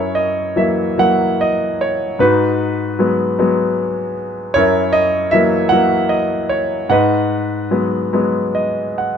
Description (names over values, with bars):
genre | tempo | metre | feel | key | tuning
classical, lyrical solo piano | 47-52 BPM (dotted quarters) | 6/8 | rubato | G# minor | A4 = 440 Hz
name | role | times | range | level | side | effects
clear concert grand piano | solo | 0.0-9.2 s | F#2 to F#5 | -14 LUFS | equal | none
room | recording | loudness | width
light reverb | none | -14 LUFS | side -7 dB against mid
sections
0.0-9.2 A section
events
grand piano fill 8.1-9.2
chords
0.0 F#7; 2.2 G#m7; 4.6 F#7; 6.9 G#m7